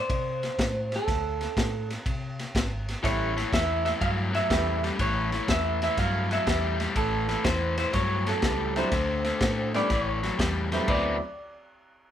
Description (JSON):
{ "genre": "electric blues shuffle", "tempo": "122 BPM", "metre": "4/4", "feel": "swing 67% on 8ths", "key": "D mixolydian", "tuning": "A4 = 439 Hz", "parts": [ { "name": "electric guitar through a small old amp", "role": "melody", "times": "0.0-11.2 s", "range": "A4 to F5", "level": "-29 LUFS", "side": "right 1 dB", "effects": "spring reverb" }, { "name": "vintage muted fingered electric bass", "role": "bass", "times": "0.1-11.2 s", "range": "G#1 to C3", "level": "-32 LUFS", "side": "equal", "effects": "none" }, { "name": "crunchy breakbeat drum kit", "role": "drums", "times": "0.1-11.0 s", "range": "crash cymbal, kick drum, ride cymbal, snare drum", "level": "-30 LUFS", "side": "equal", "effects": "none" }, { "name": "clear upright piano", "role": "accompaniment", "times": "3.0-5.3, 8.8-11.2 s", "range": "D2 to E4", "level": "-31 LUFS", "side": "right 2 dB", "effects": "none" }, { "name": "overdriven electric guitar", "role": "riff", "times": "3.0-11.2 s", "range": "A2 to B4", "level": "-29 LUFS", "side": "left 3 dB", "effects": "none" } ], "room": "light reverb", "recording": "band playing live in one room", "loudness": "-24 LUFS", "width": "side -10 dB against mid", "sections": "0.0-10.9 A section; 10.9-12.1 B section", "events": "none", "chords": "0.0 D7(no3); 3.0 A7; 8.9 D5; 9.9 A7; 10.9 D13" }